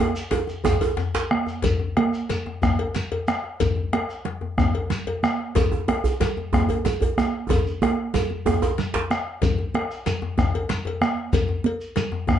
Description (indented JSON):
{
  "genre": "west african traditional, West African drum ensemble",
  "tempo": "124 BPM (dotted quarters)",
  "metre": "12/8",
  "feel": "straight",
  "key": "none",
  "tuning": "none",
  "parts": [
    { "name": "shekere", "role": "percussion", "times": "0.0-12.4 s", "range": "none", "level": "-32 LUFS", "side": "right 1 dB", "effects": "none" },
    { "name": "djembe", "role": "percussion", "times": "0.1-12.4 s", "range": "none", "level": "-28 LUFS", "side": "left 5 dB", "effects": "none" },
    { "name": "congas", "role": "percussion", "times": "0.2-12.4 s", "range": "none", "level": "-25 LUFS", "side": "right 5 dB", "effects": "none" },
    { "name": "cowbell", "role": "percussion", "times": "0.3-12.1 s", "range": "none", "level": "-30 LUFS", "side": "left 3 dB", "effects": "none" },
    { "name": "djembe", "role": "percussion", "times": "0.3-1.3, 5.6-9.1 s", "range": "none", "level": "-25 LUFS", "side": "right 4 dB", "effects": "none" },
    { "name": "bombo", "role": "percussion", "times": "0.5-12.4 s", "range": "none", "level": "-26 LUFS", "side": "left 2 dB", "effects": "none" }
  ],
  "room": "wet studio ambience, RT60 0.5 s",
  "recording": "nothing above 10.7 kHz",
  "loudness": "-21 LUFS",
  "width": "side -10 dB against mid",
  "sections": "0.0-1.6 A section; 1.6-9.4 A section; 9.4-12.4 B section",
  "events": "speeding up 0.0-12.4; drum fill 0.0-1.6, 7.5-9.4",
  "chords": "none"
}